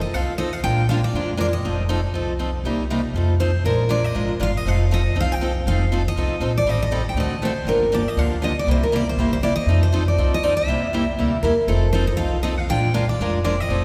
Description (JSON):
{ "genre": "acoustic string swing (jazz manouche)", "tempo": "239 BPM", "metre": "4/4", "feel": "swing 55% on 8ths", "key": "F mixolydian", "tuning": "A4 = 440 Hz", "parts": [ { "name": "picked steel-string acoustic guitar", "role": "melody", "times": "0.0-13.8 s", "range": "A4 to G5", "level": "-26 LUFS", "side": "equal", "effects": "none" }, { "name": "upright bass", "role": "bass", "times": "0.0-13.8 s", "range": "F1 to F2", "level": "-24 LUFS", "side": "equal", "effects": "none" }, { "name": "picked steel-string acoustic guitar", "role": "accompaniment", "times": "0.1-13.8 s", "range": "C3 to Bb4", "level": "-27 LUFS", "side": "equal", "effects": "none" } ], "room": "wet church reverb, RT60 2.9 s", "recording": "recorded in a church or concert hall", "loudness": "-21 LUFS", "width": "mono", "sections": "0.0-11.7 A section; 11.7-13.8 A section", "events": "none", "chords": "0.0 F7; 0.6 Bb7; 1.6 F7; 2.6 Cm7; 3.1 F7; 3.6 Bb7; 4.7 F7; 6.7 Am7b5; 7.2 D7b9; 7.7 Gm7; 8.7 C7; 9.7 F7; 10.7 C7; 11.7 F7; 12.7 Bb7" }